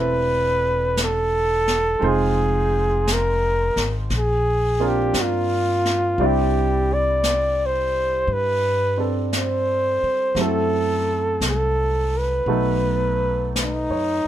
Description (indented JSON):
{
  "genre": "jazz ballad",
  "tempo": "57 BPM",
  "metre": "4/4",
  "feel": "swing 68% on 8ths",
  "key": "C major",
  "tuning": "A4 = 440 Hz",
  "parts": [
    { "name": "mellow flugelhorn", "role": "melody", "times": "0.0-14.3 s", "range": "D#4 to D5", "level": "-21 LUFS", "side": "equal", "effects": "none" },
    { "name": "warm baby grand piano", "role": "accompaniment", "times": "0.0-14.3 s", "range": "F#3 to D5", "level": "-26 LUFS", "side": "right 4 dB", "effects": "none" },
    { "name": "upright bass", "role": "bass", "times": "0.0-14.2 s", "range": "E1 to G2", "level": "-25 LUFS", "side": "equal", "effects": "none" },
    { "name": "jazz brush drum kit", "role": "drums", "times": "1.0-14.3 s", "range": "brushed snare drum, hi-hat, snare drum", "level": "-29 LUFS", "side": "left 2 dB", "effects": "none" }
  ],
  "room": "little or no reverb",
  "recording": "none",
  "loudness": "-18 LUFS",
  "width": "side -11 dB against mid",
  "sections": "0.0-14.3 A section",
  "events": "none",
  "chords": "0.0 Am11; 2.0 Fm7; 4.1 Bbadd9; 6.2 Cadd9; 10.4 F#m7b5; 12.5 B7",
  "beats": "0.96 | 2.01 3.06 4.10 5.14 | 6.19 7.23 8.27 9.32 | 10.37 11.42 12.48 13.55"
}